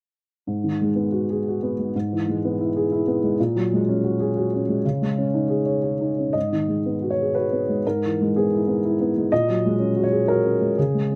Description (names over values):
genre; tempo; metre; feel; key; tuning
neoclassical minimalist piano; 123 BPM; 3/4; rubato; G# minor; A4 = 440 Hz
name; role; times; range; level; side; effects
dark baby grand piano; solo; 0.5-11.2 s; G#2 to D#5; -22 LUFS; equal; none
room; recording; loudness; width
little or no reverb; recorded outdoors, with no room sound; -22 LUFS; mono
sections
0.5-6.3 A section; 6.3-11.2 B section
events
none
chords
0.5 G#m7; 1.9 E/G#; 3.4 F#add9/A#; 4.8 C#sus2; 6.3 G#m7; 7.8 E/G#; 9.3 F#add9/A#